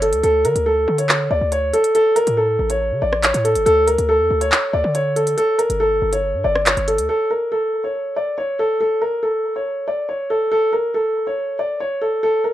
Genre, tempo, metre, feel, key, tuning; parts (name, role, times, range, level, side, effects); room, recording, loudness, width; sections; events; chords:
hip hop, drill; 140 BPM; 4/4; half-time; A4 = 440 Hz
warm concert grand piano; melody; 0.0-12.5 s; A4 to D5; -17 LUFS; equal; digital delay
hard-hitting 808-style bass; bass; 0.0-7.1 s; G1 to D3; -23 LUFS; equal
drill drum kit; drums; 0.0-7.1 s; handclaps, hi-hat, rim click; -20 LUFS; equal; vintage 12-bit sampler grit
light reverb; rough home demo mix; -16 LUFS; side -13 dB against mid
0.0-7.1 A section; 7.1-12.5 B section
0.2 Aadd11/D; 1.9 A; 3.7 Aadd11/D; 5.4 G5; 7.1 N.C.